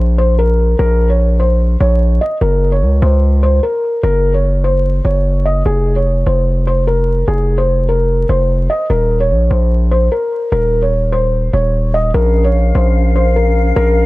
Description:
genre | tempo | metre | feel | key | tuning
hip hop, trap | 148 BPM | 4/4 | half-time | Bb minor | A4 = 440 Hz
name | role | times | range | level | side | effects
felt-muted upright piano | melody | 0.0-14.0 s | Ab4 to Eb5 | -16 LUFS | equal | low-pass filter
distorted 808-style bass | bass | 0.0-14.1 s | Eb1 to Db2 | -13 LUFS | equal | distortion
hollow large flute ensemble | sustained chords | 12.1-14.1 s | Db4 to F5 | -21 LUFS | left 1 dB | none
room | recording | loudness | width
little or no reverb | dark, warm production, vinyl crackle | -11 LUFS | side -19 dB against mid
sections
0.0-14.1 A section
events
none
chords
0.0 Bbmadd9; 2.4 Gb; 5.7 F5; 8.9 Eb5; 12.1 Bbmadd9

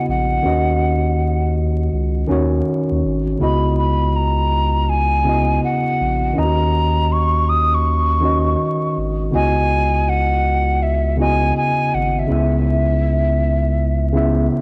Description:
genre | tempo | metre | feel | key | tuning
lo-fi hip hop | 81 BPM | 4/4 | swing 65% on 16ths | C# dorian | A4 = 439 Hz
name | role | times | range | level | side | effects
breathy hollow jazz flute | melody | 0.0-14.5 s | E5 to D#6 | -22 LUFS | equal | low-pass filter, cassette tape
tine electric piano | accompaniment | 0.0-14.6 s | C#3 to E5 | -22 LUFS | equal | overdrive, cassette tape, low-pass filter
saturated sub bass | bass | 0.1-14.5 s | G#1 to D#2 | -22 LUFS | equal | none
room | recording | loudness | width
light reverb, studio reverb | home recording on cassette, vinyl crackle | -18 LUFS | mono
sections
0.0-14.6 A section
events
none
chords
0.4 D#m7; 3.4 C#m11; 6.4 D#m7; 9.3 C#m11; 12.3 C#m7

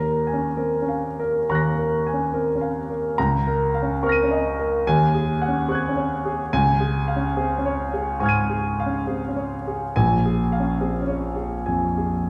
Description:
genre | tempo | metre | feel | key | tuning
classical, impressionist solo piano | 71 BPM | 4/4 | rubato | unclear | A4 = 440 Hz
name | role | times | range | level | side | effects
warm grand piano | solo | 0.0-12.3 s | Bb1 to Eb7 | -23 LUFS | equal | none
room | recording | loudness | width
wet recital hall reverb, RT60 1.4 s | heard from further back in the room | -23 LUFS | mono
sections
0.0-12.3 A section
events
none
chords
0.0 Gbmaj9/Eb; 3.2 Db69; 4.9 Ebm7; 6.5 Dbadd9; 9.9 Bbm7

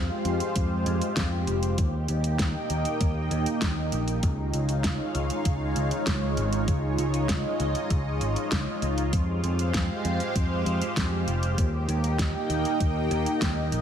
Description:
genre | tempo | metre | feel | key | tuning
synthwave | 98 BPM | 4/4 | straight | F minor | A4 = 438 Hz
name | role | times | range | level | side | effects
lush unison pad | sustained chords | 0.0-13.8 s | Ab3 to G5 | -28 LUFS | equal | chorus, phaser, sidechain pumping
picked electric bass | bass | 0.0-13.8 s | F1 to F2 | -28 LUFS | equal | tube saturation
pop drum kit | drums | 0.3-13.8 s | hi-hat, snare drum | -33 LUFS | equal | studio reverb
electronic kick drum | drums | 0.6-13.5 s | none | -28 LUFS | equal | studio reverb
room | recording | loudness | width
light reverb, digital ambience | none | -24 LUFS | side -9 dB against mid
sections
0.0-13.8 A section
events
none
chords
0.0 Fmadd9; 1.8 Eb; 4.2 Dbadd9; 9.1 Fmadd9; 11.6 Eb

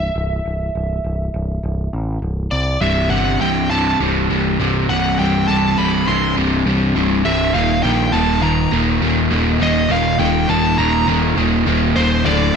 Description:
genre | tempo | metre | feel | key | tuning
post-rock | 102 BPM | 4/4 | straight | unclear | A4 = 440 Hz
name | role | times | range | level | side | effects
smooth overdriven lead guitar | melody | 0.0-12.6 s | C5 to C6 | -21 LUFS | right 1 dB | slapback echo
growling picked electric bass | bass | 0.0-12.5 s | C1 to C2 | -20 LUFS | equal | overdrive
crunchy overdriven guitar | riff | 2.8-12.6 s | C2 to Eb3 | -16 LUFS | equal | slapback echo
room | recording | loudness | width
moderate lush hall reverb, RT60 1.6 s | big arena sound | -15 LUFS | side -6 dB against mid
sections
0.0-2.8 A section; 2.8-12.3 B section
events
build-up 2.8-12.3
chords
0.0 C; 2.8 C5; 7.5 Eb5

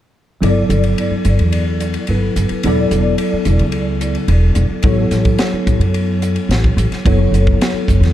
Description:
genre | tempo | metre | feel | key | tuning
electric jazz fusion | 109 BPM | 4/4 | straight | G lydian | A4 = 440 Hz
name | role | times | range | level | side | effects
tine electric piano | accompaniment | 0.4-8.1 s | F#3 to D5 | -18 LUFS | left 1 dB | medium stereo tremolo, ensemble chorus
upright bass | bass | 0.4-8.1 s | E1 to F#2 | -15 LUFS | equal | none
crisp fusion drum kit | drums | 0.4-8.1 s | hi-hat, kick drum, ride cymbal, snare drum | -21 LUFS | equal | none
room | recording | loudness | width
light reverb | dark, warm production | -13 LUFS | side -12 dB against mid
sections
0.4-8.1 A section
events
none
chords
0.4 Gmaj9; 2.6 E5; 4.8 A69; 7.1 F#m7

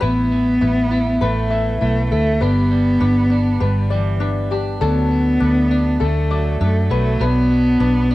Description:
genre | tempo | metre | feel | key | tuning
acoustic pop | 100 BPM | 4/4 | swing 60% on 16ths | D major | A4 = 442 Hz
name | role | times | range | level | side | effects
dark cello | melody | 0.0-8.1 s | E3 to B3 | -18 LUFS | equal | cassette tape
ukulele | accompaniment | 0.0-8.1 s | D4 to E5 | -25 LUFS | left 6 dB | none
twelve-string electric guitar | arpeggios | 0.0-8.1 s | E3 to E4 | -28 LUFS | right 7 dB | none
vintage muted fingered electric bass | bass | 0.0-8.1 s | G1 to F#2 | -19 LUFS | equal | none
room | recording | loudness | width
light reverb, studio reverb | home recording on cassette | -15 LUFS | side -17 dB against mid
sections
0.0-8.1 A section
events
none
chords
0.0 Asus2; 2.4 G; 4.8 D; 6.9 Bm

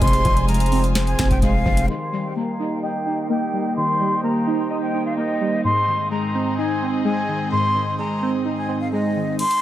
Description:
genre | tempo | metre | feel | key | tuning
hip hop, trap | 128 BPM | 4/4 | half-time | unclear | A4 = 439 Hz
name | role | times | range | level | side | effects
breathy jazz flute | melody | 0.0-9.6 s | Eb5 to C6 | -24 LUFS | equal | low-pass filter, dub echo
warm velvety synth lead | second line | 0.0-0.5 s | C5 | -35 LUFS | right 2 dB | none
warbly lo-fi synth keys | accompaniment | 0.0-9.4 s | Ab2 to Eb5 | -22 LUFS | equal | chorus, low-pass filter, dub echo
rich chamber string section | sustained chords | 0.0-9.4 s | C4 to Ab5 | -31 LUFS | equal | low-pass filter
distorted 808-style bass | bass | 0.0-1.9 s | F1 | -20 LUFS | equal | distortion
booming analog drum machine | drums | 0.0-1.9, 9.4-9.6 s | crash cymbal, finger snaps, hi-hat, kick drum, snare drum | -22 LUFS | equal | none
room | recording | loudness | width
light reverb | echo-heavy mix | -18 LUFS | side -13 dB against mid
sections
0.0-1.9 A section; 1.9-9.4 B section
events
filter sweep 1.9-9.4; kick muted 9.4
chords
0.0 Fm; 1.9 Eb; 5.6 Ab

